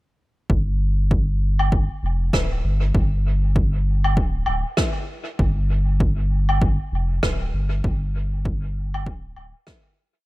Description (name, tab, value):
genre	ambient dub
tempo	98 BPM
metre	4/4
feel	swing 60% on 16ths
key	unclear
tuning	A4 = 439 Hz
part	warm sub bass	bass	0.5-9.5 s	D1 to G1	-21 LUFS	equal	none
part	electronic kick drum	drums	0.5-9.8 s	none	-23 LUFS	equal	overdrive
part	woodblock and rim click	drums	1.6-9.8 s	none	-28 LUFS	equal	dub echo
room	little or no reverb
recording	none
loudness	-19 LUFS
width	side -19 dB against mid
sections	0.5-10.3 groove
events	fade-out 7.0-10.3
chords	none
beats	| 0.49 1.11 1.72 2.33 | 2.94 3.56 4.17 4.78 | 5.39 6.01 6.62 7.23 | 7.84 8.46 9.07 9.68